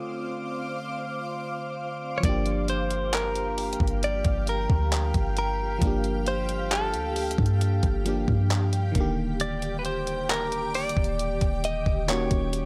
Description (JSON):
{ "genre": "contemporary R&B", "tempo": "67 BPM", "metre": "4/4", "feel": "straight", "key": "G minor", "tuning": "A4 = 441 Hz", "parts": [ { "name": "direct-recorded clean electric guitar", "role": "melody", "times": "0.0-12.7 s", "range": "A4 to Eb5", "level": "-32 LUFS", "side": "equal", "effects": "phaser, analog delay" }, { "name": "FM electric piano", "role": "accompaniment", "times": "0.0-12.7 s", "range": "D3 to G4", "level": "-35 LUFS", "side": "equal", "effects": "chorus" }, { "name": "granular cloud pad", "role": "sustained chords", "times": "0.0-12.7 s", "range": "G4 to D6", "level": "-37 LUFS", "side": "equal", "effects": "built-in reverb" }, { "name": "clean 808-style bass", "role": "bass", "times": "2.2-12.7 s", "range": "Eb1 to G2", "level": "-30 LUFS", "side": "equal", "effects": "none" }, { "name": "detuned 8-bit digital drum machine", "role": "drums", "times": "2.2-12.7 s", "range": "handclaps, hi-hat, kick drum", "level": "-30 LUFS", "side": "equal", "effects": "none" } ], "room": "little or no reverb", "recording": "dry, gritty hardware recording", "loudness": "-26 LUFS", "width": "mono", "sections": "0.0-2.2 A section; 2.2-12.7 B section", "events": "break 0.0-2.2", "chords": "0.0 Dm7; 2.2 Gm7; 9.0 Ebmaj7; 12.1 Ebm7" }